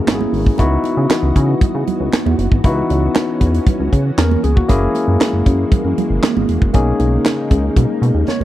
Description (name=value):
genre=early-eighties boogie funk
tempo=117 BPM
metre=4/4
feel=straight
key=C# dorian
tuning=A4 = 440 Hz
part: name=barky tine electric piano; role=accompaniment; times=0.0-8.4 s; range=A#3 to C#5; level=-19 LUFS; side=left 3 dB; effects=tube saturation
part: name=soft string machine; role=sustained chords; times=0.0-8.4 s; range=C#3 to D#5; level=-25 LUFS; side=left 1 dB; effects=ensemble chorus
part: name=chorused synth bass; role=bass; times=0.1-8.4 s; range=E1 to C#3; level=-16 LUFS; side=equal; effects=none
part: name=tight funk drum kit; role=drums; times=0.1-8.4 s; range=handclaps, hi-hat, kick drum, snare drum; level=-15 LUFS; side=equal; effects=none
part: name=congas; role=percussion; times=0.1-8.4 s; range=none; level=-22 LUFS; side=right 12 dB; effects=none
room=studio reverb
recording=dry, close 1970s-style studio recording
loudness=-13 LUFS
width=side -14 dB against mid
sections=0.0-8.4 A section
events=drum fill 8.3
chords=0.0 F#9; 0.6 C#m11; 4.7 F#9; 6.7 Bmaj13